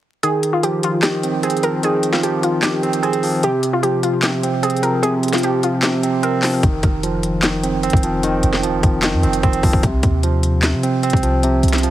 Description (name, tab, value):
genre	hip hop, trap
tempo	150 BPM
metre	4/4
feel	half-time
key	F minor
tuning	A4 = 440 Hz
part	warbly dusty pluck	melody	0.2-6.6 s	F4 to Bb4	-20 LUFS	equal	chorus, ping-pong delay
part	barky tine electric piano	accompaniment	0.2-11.9 s	C3 to C4	-18 LUFS	right 2 dB	overdrive, auto-pan
part	trap drum kit	drums	0.2-11.9 s	handclaps, hi-hat, kick drum, snare drum	-20 LUFS	equal	none
part	clean 808-style bass	bass	6.6-11.9 s	Eb1 to C3	-20 LUFS	equal	none
room	digital ambience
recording	heavily compressed radio sound, multiband compression, vinyl crackle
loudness	-15 LUFS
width	side -13 dB against mid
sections	0.2-11.9 A section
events	kick muted 0.2-6.6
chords	0.2 Fm7; 3.4 Csus4; 6.6 F5; 9.8 Csus4